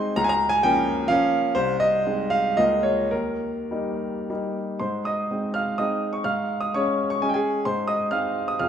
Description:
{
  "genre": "classical, romantic triple-time dance for piano with dotted rhythms",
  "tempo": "98-144 BPM",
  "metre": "3/4",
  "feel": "rubato",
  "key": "Ab major",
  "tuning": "A4 = 440 Hz",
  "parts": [
    { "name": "warm grand piano", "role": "solo", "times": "0.0-8.7 s", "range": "C2 to F6", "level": "-21 LUFS", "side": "equal", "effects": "none" }
  ],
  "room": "moderate recital hall reverb, RT60 1.9 s",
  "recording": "recorded in a church or concert hall",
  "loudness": "-21 LUFS",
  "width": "side -8 dB against mid",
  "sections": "0.0-4.8 A section; 4.8-8.7 B section",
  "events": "none",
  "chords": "0.2 Bbm/Db; 1.6 Ab/C; 2.6 Bbm7/Db; 3.1 Eb; 4.8 Ab; 6.3 Db/Ab; 7.7 Ab"
}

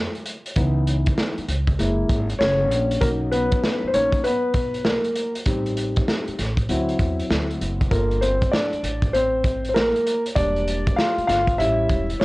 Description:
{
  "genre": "hip hop, jazz-hop",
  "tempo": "98 BPM",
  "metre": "4/4",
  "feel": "swing 66% on 16ths",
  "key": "unclear",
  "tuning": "A4 = 439 Hz",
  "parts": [
    { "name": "upright bass", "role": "bass", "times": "0.0-12.2 s", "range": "E1 to E2", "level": "-25 LUFS", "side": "equal", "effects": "none" },
    { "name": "crunchy breakbeat drum kit", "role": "drums", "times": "0.1-12.2 s", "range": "hi-hat, kick drum, snare drum", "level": "-24 LUFS", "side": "equal", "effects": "none" },
    { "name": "dark concert grand piano", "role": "accompaniment", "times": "0.6-12.2 s", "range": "E3 to F5", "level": "-22 LUFS", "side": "left 1 dB", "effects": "none" }
  ],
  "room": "small room ambience",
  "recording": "dry, gritty hardware recording",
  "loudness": "-19 LUFS",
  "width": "side -21 dB against mid",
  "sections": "0.0-12.2 A section",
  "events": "grand piano solo 0.0-12.2",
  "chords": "0.0 N.C.; 0.6 C#m7; 1.8 F#7; 3.0 Bmaj7; 5.5 Am7b5; 6.7 D7; 7.9 Gm7; 10.4 Em7b5; 11.6 A7"
}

